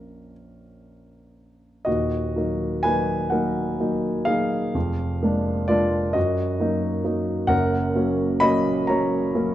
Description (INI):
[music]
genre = classical, romantic nocturne for solo piano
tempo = 37-45 BPM (dotted quarters)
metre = 6/8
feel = rubato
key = Eb minor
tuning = A4 = 439 Hz
[part]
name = warm grand piano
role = solo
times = 0.0-9.5 s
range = Eb1 to Cb6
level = -20 LUFS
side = equal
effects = none
[sound]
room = moderate recital hall reverb, RT60 1.8 s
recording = close, detailed microphones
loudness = -20 LUFS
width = side -13 dB against mid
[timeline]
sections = 0.0-1.9 A section; 1.9-9.5 B section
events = none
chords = 0.0 Bbm; 1.9 Ebm; 4.8 Bb7/F; 6.2 Ebm/Gb; 7.5 Gb